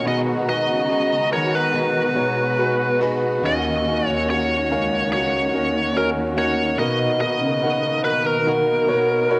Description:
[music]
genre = pop ballad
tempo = 72 BPM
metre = 4/4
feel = straight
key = Eb minor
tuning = A4 = 440 Hz
[part]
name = biting lead guitar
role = melody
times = 0.0-9.4 s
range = Bb4 to Eb5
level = -23 LUFS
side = equal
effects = overdrive
[part]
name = warm concert grand piano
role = accompaniment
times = 0.0-9.4 s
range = Bb2 to Gb5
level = -27 LUFS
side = equal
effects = cassette tape
[part]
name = dark studio string section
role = sustained chords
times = 0.0-9.4 s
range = B2 to Bb5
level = -31 LUFS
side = equal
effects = cassette tape
[part]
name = direct-recorded clean electric guitar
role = arpeggios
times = 0.0-9.4 s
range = Cb3 to Gb4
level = -32 LUFS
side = equal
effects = none
[part]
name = dark studio cello section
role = bass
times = 0.0-9.4 s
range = Db2 to Eb3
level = -29 LUFS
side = equal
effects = none
[sound]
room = moderate spring reverb, RT60 2.3 s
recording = home recording on cassette, nothing above 10.6 kHz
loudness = -20 LUFS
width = mono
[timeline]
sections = 0.0-9.4 A section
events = none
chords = 0.1 Abm7/Cb; 3.4 Ebm7; 6.8 Bmaj7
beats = | 0.07 0.91 1.75 2.60 | 3.45 4.29 5.13 5.96 | 6.80 7.63 8.47 9.30

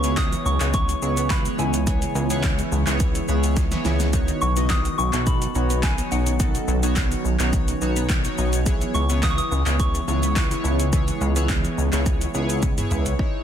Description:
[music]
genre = dance-pop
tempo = 106 BPM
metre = 4/4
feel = straight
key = C# minor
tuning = A4 = 440 Hz
[part]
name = soft synth bell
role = melody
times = 0.0-12.6 s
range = F#5 to D#6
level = -29 LUFS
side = left 1 dB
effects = chorus, phaser, tape echo
[part]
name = chorused polysynth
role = accompaniment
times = 0.0-13.4 s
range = G#3 to D#5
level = -28 LUFS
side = right 1 dB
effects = sidechain pumping
[part]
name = ethereal airy pad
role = sustained chords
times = 0.0-13.2 s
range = C#3 to G#5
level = -30 LUFS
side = right 1 dB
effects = ensemble chorus, built-in reverb, sidechain pumping
[part]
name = wide unison pluck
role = arpeggios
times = 0.0-13.0 s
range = D#3 to E4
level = -33 LUFS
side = left 1 dB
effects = phaser, sidechain pumping, tape echo
[part]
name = chorused synth bass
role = bass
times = 0.0-13.1 s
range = B1 to C#2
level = -23 LUFS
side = equal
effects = sidechain pumping
[part]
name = pop drum kit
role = drums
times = 0.0-13.3 s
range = handclaps, hi-hat, kick drum, shaker, snare drum, toms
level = -24 LUFS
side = equal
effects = overdrive
[sound]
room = little or no reverb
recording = dense, heavily limited modern master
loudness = -19 LUFS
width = side -9 dB against mid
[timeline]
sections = 0.0-13.2 A section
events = drum fill 3.6-4.1, 12.6-13.2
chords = 0.0 C#m7; 4.1 Badd9; 8.7 C#m7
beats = 0.17 0.74 1.30 | 1.87 2.44 3.00 3.57 | 4.13 4.70 5.27 5.83 | 6.40 6.96 7.53 8.10 | 8.66 9.23 9.79 10.36 | 10.93 11.49 12.06 12.62 | 13.19

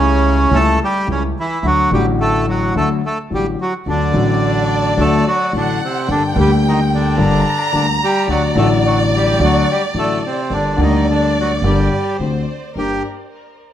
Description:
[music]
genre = tango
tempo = 108 BPM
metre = 4/4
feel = rubato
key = G harmonic minor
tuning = A4 = 440 Hz
[part]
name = bandoneon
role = melody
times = 0.0-13.0 s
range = C3 to A4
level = -18 LUFS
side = right 1 dB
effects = none
[part]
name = warm concert grand piano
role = accompaniment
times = 0.0-13.0 s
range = G1 to G4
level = -18 LUFS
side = left 4 dB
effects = none
[part]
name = upright bass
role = bass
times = 0.0-13.0 s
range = G1 to D2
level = -19 LUFS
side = right 2 dB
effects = none
[part]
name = rich chamber violin section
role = second line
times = 3.9-13.0 s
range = Bb4 to Bb5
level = -21 LUFS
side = equal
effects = tape echo
[sound]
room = moderate large studio reverb, RT60 1.1 s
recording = dark, warm production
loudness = -13 LUFS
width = side -10 dB against mid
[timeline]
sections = 0.0-12.8 A section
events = none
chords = 0.0 A7/C#; 1.6 D; 6.1 Gm; 8.3 D; 10.5 Gm; 12.2 D7; 12.8 Gm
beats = 0.52 1.07 | 1.63 2.19 2.74 3.30 | 3.86 4.42 4.98 5.53 | 6.08 6.63 7.19 7.74 | 8.29 8.84 9.39 9.95 | 10.51 11.06 11.63 12.19 | 12.75

